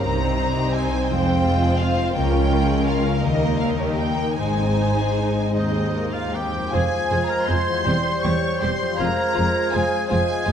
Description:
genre	classical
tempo	50-58 BPM (dotted quarters)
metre	6/8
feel	rubato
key	Ab major, F minor from 6.7 s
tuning	A4 = 440 Hz
part	warm studio violin section	melody	0.0-10.5 s	Db5 to Db6	-27 LUFS	left 2 dB	none
part	warm studio violin section	second line	0.0-10.5 s	G3 to C5	-29 LUFS	left 2 dB	none
part	warm studio viola section	accompaniment	0.0-10.5 s	G3 to F4	-27 LUFS	right 2 dB	none
part	dark French horn section	sustained chords	0.0-10.5 s	G3 to C5	-29 LUFS	left 4 dB	none
part	concert harp	arpeggios	0.0-10.5 s	E2 to C5	-29 LUFS	left 8 dB	none
part	warm studio cello section	bass	0.0-10.5 s	Db2 to C3	-27 LUFS	right 1 dB	none
part	warm studio double bass section	bass	0.0-10.5 s	E1 to Eb2	-26 LUFS	right 3 dB	none
part	clear oboe	second line	5.6-10.5 s	Eb4 to Db5	-30 LUFS	right 1 dB	none
part	silver concert flute	second line	6.7-10.5 s	G6 to Ab6	-29 LUFS	left 2 dB	none
part	warm clarinet	second line	6.7-10.5 s	C5	-30 LUFS	right 1 dB	none
part	mellow bassoon	accompaniment	6.7-10.5 s	F3 to G3	-27 LUFS	right 3 dB	none
room	moderate scoring stage reverb, RT60 1.6 s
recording	dark, warm production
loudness	-19 LUFS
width	side -8 dB against mid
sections	0.0-6.7 A section; 6.7-10.5 B section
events	none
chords	0.0 Cm7; 1.1 Fm; 2.1 Bbm7/Db; 3.2 Eb; 4.4 Ab; 6.7 Fm; 7.9 C/E; 9.0 Fm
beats	| 0.03 1.09 | 2.15 3.24 | 4.38 5.56 | 6.74 7.87 | 8.99 10.11

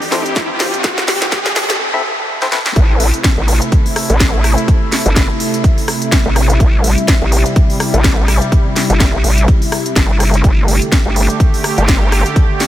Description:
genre	bass house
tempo	125 BPM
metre	4/4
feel	swing 57% on 16ths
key	A minor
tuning	A4 = 440 Hz
part	sweeping resonant pad	sustained chords	0.0-12.7 s	C3 to G4	-20 LUFS	right 1 dB	chorus, sidechain pumping
part	house drum kit	drums	0.0-12.7 s	hi-hat, rim click, snare drum	-18 LUFS	equal	none
part	riser	sound effects	0.0-1.8 s	none	-23 LUFS	equal	none
part	percussive organ stab	stabs	0.1-2.6 s	C4 to E5	-24 LUFS	left 2 dB	chorus, sidechain pumping, tape echo
part	electronic kick drum	drums	0.4-12.5 s	none	-12 LUFS	equal	none
part	vowel-sweep wobble bass	bass	2.8-12.2 s	G1 to A1	-13 LUFS	equal	chorus, sidechain pumping
room	light reverb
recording	high-pass filter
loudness	-11 LUFS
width	side -13 dB against mid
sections	0.0-2.8 A section; 2.8-12.7 B section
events	build-up 0.0-2.8; drum fill 0.0-1.8, 2.4-2.8; riser 0.0-1.8; filter sweep on synth stab 0.0-2.8; drop 2.8-12.7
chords	0.0 Am; 10.4 Gsus2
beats	0.36 | 0.84 1.32 1.80 2.28 | 2.76 3.24 3.72 4.20 | 4.68 5.16 5.64 6.12 | 6.60 7.08 7.56 8.04 | 8.52 9.00 9.48 9.96 | 10.44 10.92 11.40 11.88 | 12.36

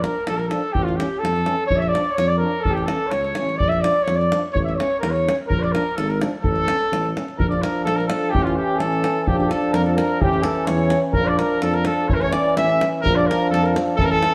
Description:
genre	balkan folk, Balkan brass band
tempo	127 BPM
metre	2/4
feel	straight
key	unclear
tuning	A4 = 440 Hz
part	warm cornet	melody	0.0-14.3 s	F4 to E5	-25 LUFS	equal	tape echo
part	mellow trumpet	second line	0.0-14.3 s	F4 to E5	-28 LUFS	equal	none
part	mellow trombone	accompaniment	0.0-14.3 s	C#4 to D4	-30 LUFS	equal	none
part	warm euphonium	accompaniment	0.0-14.3 s	E3 to F3	-30 LUFS	equal	none
part	mellow tuba	bass	0.0-14.2 s	G#1 to F2	-27 LUFS	equal	none
part	davul	percussion	0.0-14.3 s	none	-28 LUFS	equal	none
room	wet stone room reverb, RT60 1.1 s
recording	band playing live in one room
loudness	-20 LUFS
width	mono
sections	0.0-7.4 A section; 7.4-14.3 A section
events	none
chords	0.0 Bb; 0.7 A; 1.7 Bb; 2.6 A; 3.6 Bb; 4.5 A; 5.5 Bb; 6.4 A; 7.4 Bb; 8.3 A; 9.3 Bb; 10.2 A; 11.1 Bb; 12.1 A; 13.0 Bb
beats	0.27 | 0.75 1.22 | 1.70 2.17 | 2.65 3.12 | 3.60 4.07 | 4.55 5.02 | 5.49 5.97 | 6.44 6.91 | 7.38 7.86 | 8.33 8.80 | 9.27 9.74 | 10.21 10.68 | 11.15 11.62 | 12.09 12.56 | 13.03 13.50 | 13.97

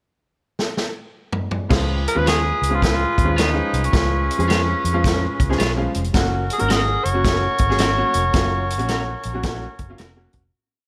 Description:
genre	uptempo 1960s-style soul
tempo	109 BPM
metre	4/4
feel	swing 64% on 8ths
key	Db mixolydian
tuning	A4 = 436 Hz
part	swinging big-band drum kit	drums	0.6-10.4 s	crash cymbal, hi-hat, kick drum, snare drum, toms	-24 LUFS	equal	none
part	warm horn section	second line	1.7-10.3 s	Db4 to Cb5	-31 LUFS	equal	none
part	clear upright piano	accompaniment	1.7-10.4 s	F3 to Ab4	-28 LUFS	equal	none
part	vintage muted fingered electric bass	bass	1.7-10.5 s	F1 to F2	-26 LUFS	equal	none
part	warm tenor saxophone	melody	2.1-10.0 s	Db4 to Db5	-25 LUFS	equal	none
part	electric guitar at the edge of break-up	stabs	2.3-10.1 s	Db4 to Db5	-30 LUFS	equal	lush chorus
room	light reverb, small room ambience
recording	none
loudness	-20 LUFS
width	mono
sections	0.0-1.7 pickup bar; 1.7-10.5 verse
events	drum fill 0.6-1.7; fade-out 8.3-10.5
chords	0.0 N.C.; 1.7 Db; 6.1 Gb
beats	0.03 0.59 1.15 | 1.71 2.27 2.82 3.38 | 3.93 4.49 5.04 5.59 | 6.14 6.69 7.24 7.79 | 8.34 8.89 9.44 9.99

